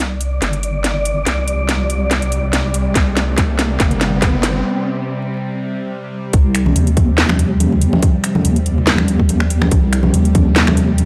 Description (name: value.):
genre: deep dubstep.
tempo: 142 BPM.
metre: 4/4.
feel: swing 53% on 16ths, half-time.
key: C minor.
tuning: A4 = 440 Hz.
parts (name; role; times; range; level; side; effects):
bowed-like drone; sustained chords; 0.4-11.1 s; C3 to G3; -24 LUFS; equal; built-in reverb, phaser.
deep soft wobble bass; bass; 0.0-11.1 s; G1 to Eb2; -19 LUFS; equal; chorus.
garage drum kit; drums; 0.0-11.1 s; finger snaps, hi-hat, snare drum; -21 LUFS; equal; studio reverb.
riser; sound effects; 1.2-4.6 s; none; -28 LUFS; equal; none.
wind-like tuned noise texture; texture; 0.0-4.6 s; D5; -28 LUFS; equal; built-in reverb.
electronic kick drum; drums; 3.0-10.4 s; none; -17 LUFS; equal; studio reverb.
congas; percussion; 6.7-11.1 s; none; -21 LUFS; equal; dub echo.
room: light reverb.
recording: dry, gritty hardware recording, transformer saturation, vinyl crackle.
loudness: -16 LUFS.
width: mono.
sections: 0.0-6.3 A section; 6.3-11.1 B section.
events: build-up 0.0-6.3; drum fill 0.0-4.6; filter sweep on synth drone 0.0-6.3; riser 1.2-4.6; break 4.6-6.3; drop 6.3-11.1.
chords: 0.0 Csus2; 6.3 Cm.